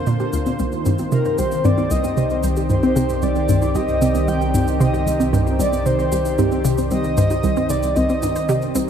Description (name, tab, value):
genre	ambient, sequencer-driven space music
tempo	114 BPM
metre	4/4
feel	straight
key	C minor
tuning	A4 = 440 Hz
part	lush unison pad	sustained chords	0.0-8.9 s	D3 to C5	-24 LUFS	equal	chorus
part	fat analog bass	bass	0.0-8.9 s	Bb1	-26 LUFS	equal	none
part	hollow square pluck	riff	0.1-8.9 s	C2 to C3	-21 LUFS	equal	chorus, tape echo
part	shaker and bongos	percussion	0.1-8.9 s	none	-33 LUFS	right 2 dB	none
part	wide unison pluck	arpeggios	0.2-8.9 s	C4 to C5	-25 LUFS	moving between left 2 dB and right 5 dB	auto-pan, tape echo
part	breathy flute-like synth lead	melody	1.1-8.8 s	G4 to G5	-23 LUFS	equal	analog chorus, tape echo
room	moderate huge ambient reverb, RT60 7.8 s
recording	none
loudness	-16 LUFS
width	side -8 dB against mid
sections	0.0-8.9 A section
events	none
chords	0.0 Bbadd9; 0.6 Cm